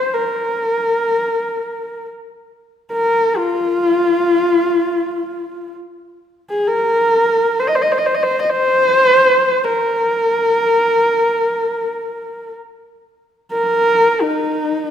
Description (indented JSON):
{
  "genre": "mongolian traditional, Mongolian folk",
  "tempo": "free time",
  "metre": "none",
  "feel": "none",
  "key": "unclear",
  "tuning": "A4 = 438 Hz",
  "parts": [
    { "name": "dark horsehead fiddle", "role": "solo", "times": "0.0-14.9 s", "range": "Eb4 to Eb5", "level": "-14 LUFS", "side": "equal", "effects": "none" }
  ],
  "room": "wet concert hall reverb, RT60 1.8 s",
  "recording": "minimal, uncompressed stereo recording",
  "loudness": "-14 LUFS",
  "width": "side -9 dB against mid",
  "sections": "0.0-5.9 A section; 5.9-14.9 A section",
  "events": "slowing down 12.2-14.9",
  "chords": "none"
}